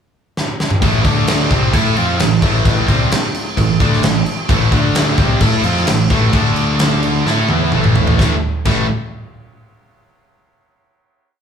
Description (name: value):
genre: hard rock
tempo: 130 BPM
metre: 4/4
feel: straight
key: A minor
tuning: A4 = 440 Hz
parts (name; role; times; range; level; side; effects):
- big rock drum kit; drums; 0.4-8.8 s; crash cymbal, kick drum, snare drum, toms; -15 LUFS; equal; none
- distorted electric guitar; riff; 0.8-8.9 s; A2 to A4; -20 LUFS; left 8 dB; overdrive
- high-gain distorted guitar; riff; 0.8-8.9 s; A2 to A4; -19 LUFS; right 9 dB; distortion
- fuzz picked electric bass; bass; 0.8-8.9 s; A1 to A2; -20 LUFS; equal; overdrive
room: moderate large studio reverb, RT60 1.0 s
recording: band playing live in one room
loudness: -12 LUFS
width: side -7 dB against mid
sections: 0.0-0.8 pickup bar; 0.8-8.2 riff; 8.2-10.1 final chord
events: drum fill 0.4-0.8, 7.3-8.2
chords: 0.0 N.C.; 0.8 A5; 1.1 D5; 1.5 Am; 4.7 D5; 5.2 Am; 6.3 D5; 7.3 A5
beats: 0.37 | 0.82 1.28 1.74 2.19 | 2.65 3.11 3.57 4.03 | 4.49 4.95 5.41 5.87 | 6.34 6.80 7.26 7.73 | 8.19 8.66